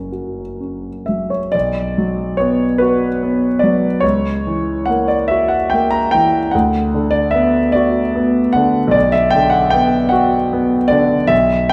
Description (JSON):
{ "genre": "classical, romantic nocturne for solo piano", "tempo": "41-52 BPM (dotted quarters)", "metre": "6/8", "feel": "rubato", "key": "B minor", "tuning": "A4 = 440 Hz", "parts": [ { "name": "warm concert grand piano", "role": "solo", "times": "0.0-11.7 s", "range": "F#1 to A#5", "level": "-16 LUFS", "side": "equal", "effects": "none" } ], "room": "wet recital hall reverb, RT60 1.6 s", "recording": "none", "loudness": "-15 LUFS", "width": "mono", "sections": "0.0-1.5 A section; 1.5-11.7 A section", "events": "none", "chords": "0.0 F#; 1.5 Bm; 4.0 F#7/C#; 6.5 Bm/D; 9.0 Bm", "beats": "0.12 | 1.54 2.81 | 4.03 5.30 | 6.54 7.75 | 8.95 10.12 | 11.31" }